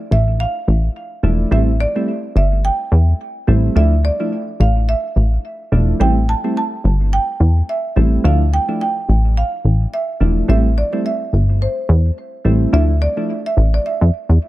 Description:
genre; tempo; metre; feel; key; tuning
afrobeats; 107 BPM; 4/4; swing 58% on 16ths; A minor; A4 = 440 Hz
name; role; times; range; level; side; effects
marimba with medium mallets; melody; 0.0-14.5 s; C5 to A5; -23 LUFS; right 3 dB; analog delay
plucky analog bass; bass; 0.1-14.4 s; E1 to F2; -13 LUFS; equal; none
soft electric-piano-like synth keys; accompaniment; 1.2-13.3 s; F3 to E4; -22 LUFS; right 1 dB; chorus, analog delay
room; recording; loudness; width
small room ambience; echo-heavy mix; -14 LUFS; side -16 dB against mid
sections
0.0-14.5 A section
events
none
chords
0.0 Dmadd9; 1.5 Am7; 3.8 Dmadd9; 6.0 Am7; 8.2 Dmadd9; 10.5 Am7; 12.7 Dmadd9

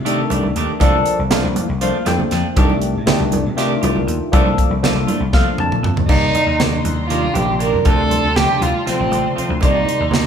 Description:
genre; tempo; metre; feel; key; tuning
electric jazz fusion; 239 BPM (eighths); 7/8; straight; C dorian; A4 = 440 Hz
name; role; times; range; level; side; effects
vintage slap bass; bass; 0.0-10.3 s; A1 to C3; -21 LUFS; left 1 dB; none
barky tine electric piano; accompaniment; 0.1-10.3 s; C3 to A5; -20 LUFS; left 2 dB; phaser
clean electric guitar; stabs; 0.1-10.3 s; Eb3 to G4; -25 LUFS; right 5 dB; none
tight funk drum kit; drums; 0.1-10.2 s; crash cymbal, hi-hat, kick drum, snare drum, toms; -19 LUFS; equal; none
congas; percussion; 0.3-10.3 s; none; -24 LUFS; right 4 dB; none
dark violin; melody; 6.1-10.3 s; C4 to Bb4; -18 LUFS; right 2 dB; none
muted studio string section; sustained chords; 6.1-10.3 s; F4 to C6; -29 LUFS; left 3 dB; none
room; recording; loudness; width
moderate large studio reverb, RT60 1.2 s; band playing live in one room; -14 LUFS; side -8 dB against mid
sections
0.0-6.1 A section; 6.1-10.3 B section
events
drum fill 5.3-6.1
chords
0.0 F13/C (rootless); 0.8 Bbmaj7/C; 2.6 F13/C; 4.3 Bbmaj7/C; 6.1 Cm9; 7.9 Dm7; 9.6 Cm9

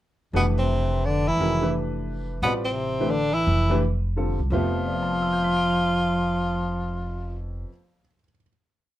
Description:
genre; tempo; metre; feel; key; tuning
modal jazz; 172 BPM; 3/4; swing 65% on 8ths; F lydian; A4 = 442 Hz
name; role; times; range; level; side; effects
clear bass clarinet; second line; 0.3-7.4 s; B2 to F3; -28 LUFS; left 2 dB; none
warm grand piano; accompaniment; 0.3-8.5 s; F2 to F7; -29 LUFS; left 1 dB; none
upright bass; bass; 0.3-7.6 s; F1 to C2; -27 LUFS; equal; none
breathy tenor saxophone; melody; 0.4-7.4 s; B3 to F4; -25 LUFS; equal; none
room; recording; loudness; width
moderate studio reverb, RT60 0.6 s; none; -22 LUFS; side -14 dB against mid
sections
0.3-4.5 A section; 4.5-6.6 final chord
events
none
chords
0.3 Fmaj9#11

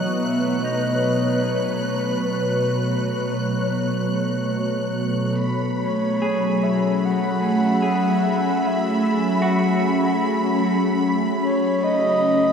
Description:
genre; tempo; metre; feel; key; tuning
ambient; 75 BPM; 4/4; straight; unclear; A4 = 440 Hz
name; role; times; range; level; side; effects
breathy flute-like synth lead; melody; 0.0-12.5 s; B4 to F#5; -26 LUFS; equal; chorus, diffuse ambient delay
glassy FM pad; sustained chords; 0.0-12.5 s; B2 to F#5; -20 LUFS; equal; ensemble chorus, built-in reverb
electric guitar through a small old amp; arpeggios; 0.0-10.8 s; D#4 to G#4; -31 LUFS; right 1 dB; spring reverb, diffuse ambient delay
organ-like drone; drone; 0.0-12.5 s; F#3; -31 LUFS; right 3 dB; ensemble chorus, built-in reverb
warm symphonic violin section; texture; 0.0-12.5 s; B5 to F#6; -30 LUFS; equal; none
room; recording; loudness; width
wet cathedral reverb, RT60 4.9 s; in a vast, echoing space; -19 LUFS; side -6 dB against mid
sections
0.0-12.5 A section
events
fade-in on clean electric guitar 0.0-12.5; fade-in on soft synth lead 0.0-12.5; fade-out on synth drone 0.0-12.5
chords
0.0 B7; 5.4 F#m7; 11.8 C#7(no3)

